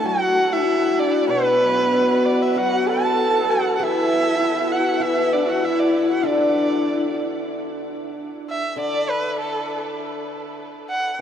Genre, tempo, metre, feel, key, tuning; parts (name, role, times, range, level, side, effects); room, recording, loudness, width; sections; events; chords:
chinese traditional, Chinese chamber ensemble; 97 BPM; 2/4; rubato; D gong mode; A4 = 442 Hz
warm erhu; melody; 0.0-11.2 s; A4 to A5; -23 LUFS; right 2 dB
dark horsehead fiddle; second line; 0.0-7.2 s; B3 to A4; -26 LUFS; right 1 dB
low xiao; second line; 0.0-7.2 s; D4 to B4; -26 LUFS; left 3 dB
hammered dulcimer; accompaniment; 0.0-11.2 s; B2 to E4; -23 LUFS; left 1 dB
wet huge ambient reverb, RT60 7.8 s; in a vast, echoing space; -18 LUFS; side -9 dB against mid
0.0-7.5 A section; 7.5-11.2 B section